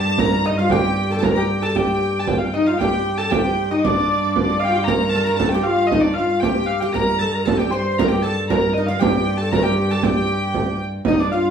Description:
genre	medieval dance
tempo	116 BPM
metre	2/4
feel	straight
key	G minor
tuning	A4 = 440 Hz
part	rich hurdy-gurdy	melody	0.0-11.5 s	D5 to C6	-22 LUFS	left 1 dB	none
part	bass recorder	second line	0.0-11.5 s	D4 to C5	-24 LUFS	left 2 dB	none
part	oud	second line	0.0-11.5 s	D4 to C5	-25 LUFS	right 3 dB	none
part	warm viola da gamba	drone	0.0-11.5 s	G2	-24 LUFS	equal	none
part	frame drum	percussion	0.2-11.3 s	none	-21 LUFS	right 4 dB	none
room	wet studio reverb, RT60 0.6 s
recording	band playing live in one room, studio reverb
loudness	-16 LUFS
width	side -7 dB against mid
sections	0.0-2.8 A section; 2.8-11.1 A section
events	none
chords	none

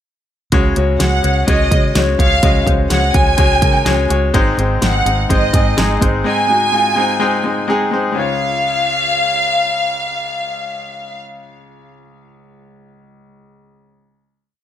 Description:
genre	piano-driven pop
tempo	126 BPM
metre	4/4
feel	straight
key	Db major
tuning	A4 = 436 Hz
part	bright concert grand piano	accompaniment	0.5-14.5 s	Db2 to Eb5	-18 LUFS	left 2 dB	none
part	vintage muted fingered electric bass	bass	0.5-6.2 s	Ab1 to Db3	-18 LUFS	right 1 dB	none
part	pop drum kit	drums	0.5-6.1 s	hi-hat, kick drum, snare drum	-16 LUFS	right 1 dB	none
part	warm studio violin section	melody	1.0-11.2 s	Eb5 to Ab5	-17 LUFS	equal	none
room	moderate large studio reverb, RT60 0.9 s, small room ambience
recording	none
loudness	-12 LUFS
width	side -10 dB against mid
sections	0.5-8.2 verse; 8.2-12.0 final chord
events	none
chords	0.5 Dbsus4; 4.3 Ab; 8.2 Db

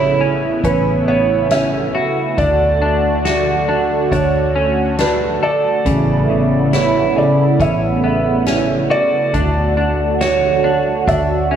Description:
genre	dream pop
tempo	69 BPM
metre	4/4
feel	straight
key	D major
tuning	A4 = 440 Hz
part	felt-muted upright piano	melody	0.0-11.6 s	B4 to E5	-18 LUFS	right 3 dB	digital delay
part	warm analog pad	sustained chords	0.0-11.6 s	C#3 to F#4	-19 LUFS	right 2 dB	chorus
part	semi-hollow electric guitar	arpeggios	0.0-11.6 s	C#3 to A4	-19 LUFS	left 2 dB	analog chorus, digital delay
part	vintage muted picked electric bass	bass	0.0-11.6 s	A1 to D2	-22 LUFS	equal	none
part	soft-mallet drum kit	drums	0.6-11.3 s	hi-hat, kick drum, snare drum	-26 LUFS	equal	none
room	moderate huge ambient reverb, RT60 8.2 s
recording	small room ambience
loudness	-13 LUFS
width	side -8 dB against mid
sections	0.0-11.6 A section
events	none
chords	0.0 Aadd9; 2.4 Dmaj7; 5.9 Aadd9; 9.3 Dmaj7

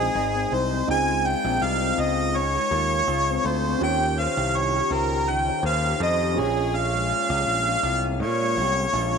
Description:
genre	indie pop, bedroom pop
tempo	82 BPM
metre	4/4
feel	swing 55% on 16ths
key	unclear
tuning	A4 = 436 Hz
part	clear harmonica	melody	0.0-9.2 s	Ab4 to Ab5	-23 LUFS	right 1 dB	analog chorus, tape echo
part	dark upright piano	accompaniment	0.0-9.2 s	Db4 to G5	-32 LUFS	right 14 dB	none
part	electric guitar through a small old amp	accompaniment	0.0-9.2 s	Ab2 to C5	-28 LUFS	left 14 dB	wide subtle chorus, warbly pitch drift
part	modern bright picked electric bass	bass	0.0-9.2 s	Ab1 to Bb2	-27 LUFS	right 1 dB	none
room	light reverb, small room ambience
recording	1960s-style stereo with parts hard left and right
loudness	-21 LUFS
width	side -6 dB against mid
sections	0.0-9.2 A section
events	none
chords	0.0 Abmaj7; 0.9 Dbmaj7; 3.8 Eb13; 6.4 Bbm7

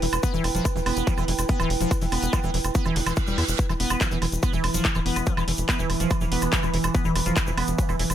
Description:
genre	psychedelic trance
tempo	143 BPM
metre	4/4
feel	straight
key	E minor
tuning	A4 = 440 Hz
part	liquid acid bass	riff	0.0-8.0 s	D3 to E4	-29 LUFS	moving between left 6 dB and right 6 dB	chorus, auto-pan, sidechain pumping, tape echo
part	tight sequencer bass	bass	0.0-8.1 s	D1 to E2	-27 LUFS	equal	none
part	big-room dance drum kit	drums	0.0-8.1 s	handclaps, hi-hat, woodblock	-29 LUFS	right 2 dB	overdrive
part	warbly tape-like pad	texture	0.0-8.1 s	E4 to B5	-32 LUFS	right 4 dB	chorus, built-in reverb, sidechain pumping
part	egg shaker	percussion	0.1-8.1 s	none	-37 LUFS	left 4 dB	none
part	electronic kick drum	drums	0.2-7.9 s	none	-25 LUFS	equal	overdrive
part	reverse cymbal	sound effects	2.9-3.6 s	none	-33 LUFS	right 7 dB	none
part	evolving wavetable pad	sustained chords	4.3-8.1 s	E3	-30 LUFS	right 2 dB	chorus, built-in reverb, sidechain pumping
room	light reverb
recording	none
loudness	-21 LUFS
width	side -10 dB against mid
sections	0.0-8.1 A section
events	reverse cymbal 2.9-3.6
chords	0.0 E5

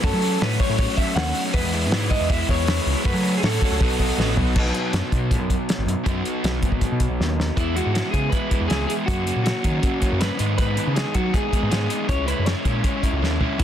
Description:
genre	indie rock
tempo	159 BPM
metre	4/4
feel	straight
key	E lydian from 7.6 s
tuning	A4 = 440 Hz
part	electric guitar through a small old amp	melody	0.0-4.3, 7.6-13.6 s	E4 to F#5	-27 LUFS	equal	analog delay
part	bright tonewheel organ	sustained chords	0.0-4.5, 13.6 s	G#4 to E6	-36 LUFS	right 1 dB	overdrive, chorus vibrato, fast rotary speaker
part	crunchy overdriven guitar	riff	0.0-13.6 s	F#2 to F#4	-25 LUFS	equal	none
part	growling picked electric bass	bass	0.0-13.6 s	G#1 to F#3	-24 LUFS	equal	overdrive
part	cloth-damped thuddy drum kit	drums	0.0-13.6 s	crash cymbal, hi-hat, kick drum, snare drum, splash cymbal, toms	-24 LUFS	equal	none
room	little or no reverb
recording	dense, heavily limited modern master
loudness	-19 LUFS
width	side -10 dB against mid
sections	0.0-4.6 A section; 4.6-7.6 B section; 7.6-13.6 C section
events	drum fill 4.2-4.6, 7.2-7.6, 13.2-13.6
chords	0.0 F#m; 1.5 E; 3.0 F#m; 3.8 B; 7.6 E; 9.1 F#; 10.4 G#m; 12.1 C#m

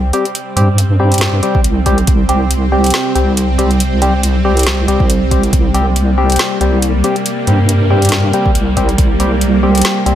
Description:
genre	deep dubstep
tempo	139 BPM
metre	4/4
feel	swing 56% on 16ths, half-time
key	unclear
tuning	A4 = 440 Hz
part	bowed-like drone	sustained chords	0.0-10.2 s	C3 to C4	-18 LUFS	right 1 dB	built-in reverb, phaser
part	deep soft wobble bass	bass	0.0-10.2 s	C2 to G2	-13 LUFS	equal	chorus
part	percussive organ stab	stabs	0.1-10.2 s	G3 to G4	-17 LUFS	left 2 dB	chorus, cassette tape, dub echo
part	garage drum kit	drums	0.1-10.2 s	hi-hat, snare drum	-18 LUFS	equal	none
part	electronic kick drum	drums	1.5-2.2, 5.0-5.6, 8.5-9.1 s	none	-14 LUFS	equal	overdrive
room	light reverb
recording	none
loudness	-10 LUFS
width	side -11 dB against mid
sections	0.0-10.2 A section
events	none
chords	0.0 C5

